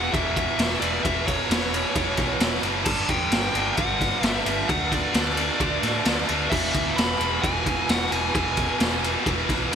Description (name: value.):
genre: hard rock.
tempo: 131 BPM.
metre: 4/4.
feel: straight.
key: unclear.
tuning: A4 = 442 Hz.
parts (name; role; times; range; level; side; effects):
dark smooth lead guitar; melody; 0.0-9.0 s; C#5 to B5; -28 LUFS; left 1 dB; overdrive, digital delay.
distorted electric guitar; riff; 0.0-9.8 s; E2 to D4; -32 LUFS; right 2 dB; none.
overdriven electric guitar; riff; 0.0-9.8 s; E2 to D4; -30 LUFS; right 12 dB; none.
scooped high-gain guitar; riff; 0.0-9.8 s; E2 to D4; -29 LUFS; left 13 dB; distortion.
picked electric bass; bass; 0.0-9.8 s; E1 to A2; -32 LUFS; equal; none.
raw garage drum kit; drums; 0.1-9.8 s; crash cymbal, kick drum, ride cymbal, snare drum; -24 LUFS; equal; gated reverb.
room: moderate lush hall reverb, RT60 1.8 s, studio reverb.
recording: bright 1980s-style digital production.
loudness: -21 LUFS.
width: side -8 dB against mid.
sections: 0.0-9.8 A section.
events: none.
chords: 0.0 E5; 2.9 G5; 4.7 D5; 6.5 E.